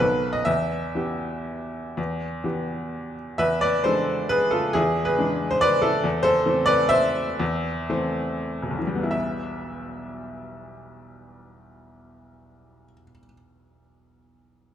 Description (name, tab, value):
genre	classical, piano waltz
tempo	88-147 BPM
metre	3/4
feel	rubato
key	E minor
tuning	A4 = 438 Hz
part	clear upright piano	solo	0.0-14.7 s	E1 to E5	-22 LUFS	equal	none
room	moderate recital hall reverb, RT60 1.7 s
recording	none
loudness	-21 LUFS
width	side -10 dB against mid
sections	0.0-3.4 A section; 3.4-9.1 B section; 9.1-12.7 C section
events	slowing down 5.4-9.1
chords	0.0 B7; 0.5 Em; 3.4 E7; 6.0 Am/E; 9.1 Em